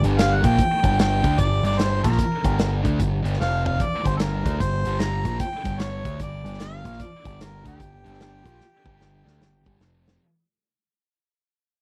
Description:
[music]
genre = blues rock power trio and southern rock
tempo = 150 BPM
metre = 4/4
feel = swing 63% on 8ths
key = G minor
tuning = A4 = 440 Hz
[part]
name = warm harmonica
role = melody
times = 0.0-9.8 s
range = G4 to Bb5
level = -30 LUFS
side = equal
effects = overdrive, slapback echo
[part]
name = thick fuzz guitar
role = riff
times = 0.0-10.2 s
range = F2 to D4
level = -29 LUFS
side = equal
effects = distortion
[part]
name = growling picked electric bass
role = bass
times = 0.0-10.2 s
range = F1 to D2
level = -27 LUFS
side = equal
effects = overdrive
[part]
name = big rock drum kit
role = drums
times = 0.0-10.1 s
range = hi-hat, kick drum, snare drum, toms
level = -28 LUFS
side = equal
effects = none
[sound]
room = little or no reverb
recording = dry, close 1970s-style studio recording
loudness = -22 LUFS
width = mono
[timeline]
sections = 0.0-10.2 A section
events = fade-out 0.0-10.2; drum fill 3.4-3.8, 8.6-10.2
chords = 0.0 Gm; 3.4 F5; 4.0 Gm; 9.8 F5

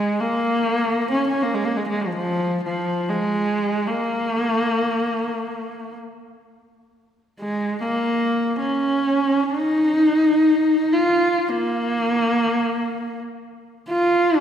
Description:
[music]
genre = mongolian traditional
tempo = free time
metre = none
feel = none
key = Bb yu mode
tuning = A4 = 440 Hz
[part]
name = rich horsehead fiddle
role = solo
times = 0.0-14.4 s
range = F3 to F4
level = -19 LUFS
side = equal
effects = none
[sound]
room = wet concert hall reverb, RT60 2.3 s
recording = heard from further back in the room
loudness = -19 LUFS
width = side -9 dB against mid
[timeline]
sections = 0.0-14.4 A section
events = none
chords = none

